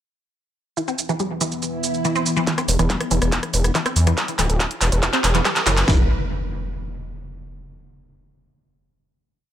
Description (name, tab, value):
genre	driving peak-time techno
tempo	141 BPM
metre	4/4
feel	straight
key	unclear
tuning	A4 = 441 Hz
part	resonant blip pluck	riff	0.8-6.1 s	E3 to C4	-24 LUFS	equal	phaser, tube saturation, wide subtle chorus, sidechain pumping, tape echo
part	deep dark ambient pad	drone	1.1-2.5 s	E3 to B3	-28 LUFS	left 2 dB	chorus, built-in reverb, sidechain pumping
part	techno drum kit	drums	0.8-5.9 s	handclaps, hi-hat, rim click, shaker	-22 LUFS	right 1 dB	overdrive, small room reverb
part	swell, riser and impact	sound effects	1.8-7.6 s	none	-29 LUFS	right 1 dB	none
part	techno drum kit	drums	2.5-6.0 s	kick drum, snare drum	-23 LUFS	equal	distortion, overdrive, high-pass filter on kick, small room reverb, high-pass filter on snare
part	gritty driven synth bass	bass	2.7-6.1 s	D1 to E2	-19 LUFS	equal	distortion, sidechain pumping
room	light reverb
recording	none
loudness	-18 LUFS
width	side -10 dB against mid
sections	0.8-2.5 intro; 2.5-5.9 build; 5.9-7.6 final note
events	filter sweep on synth arpeggio sound 0.8-2.5, 2.5-5.9; swell 1.8-2.5; build-up 2.5-5.9; drum fill 2.5-5.9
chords	0.8 E5; 2.5 Dsus2; 5.9 N.C.